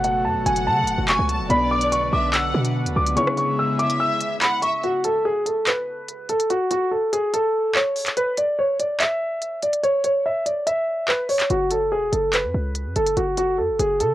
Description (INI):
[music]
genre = hip hop, drill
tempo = 144 BPM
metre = 4/4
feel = half-time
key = F# minor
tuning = A4 = 439 Hz
[part]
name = dark concert grand piano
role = melody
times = 0.0-14.1 s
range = F#4 to E6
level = -20 LUFS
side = equal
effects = low-pass filter, cassette tape
[part]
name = felt-muted upright piano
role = accompaniment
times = 0.0-4.9 s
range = B2 to D5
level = -28 LUFS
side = left 2 dB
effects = low-pass filter, cassette tape
[part]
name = airy breathy pad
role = sustained chords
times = 0.0-4.8 s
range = B2 to F#4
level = -28 LUFS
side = equal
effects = chorus, cassette tape
[part]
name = short 808-style bass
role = bass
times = 0.0-3.2, 11.5-14.1 s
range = E1 to C#3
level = -26 LUFS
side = equal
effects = none
[part]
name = drill drum kit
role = drums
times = 0.0-14.1 s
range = handclaps, hi-hat, rim click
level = -24 LUFS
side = equal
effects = none
[part]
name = clear studio violin section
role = second line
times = 0.5-4.8 s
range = D5 to A5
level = -28 LUFS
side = equal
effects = cassette tape, analog delay
[sound]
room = light reverb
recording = home recording on cassette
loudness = -19 LUFS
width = side -14 dB against mid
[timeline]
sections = 0.0-4.8 A section; 4.8-14.1 B section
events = kick muted 3.2-4.8, 4.8-11.5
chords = 0.0 F#m; 1.5 Bm; 3.2 C#m7; 4.8 N.C.; 11.5 F#m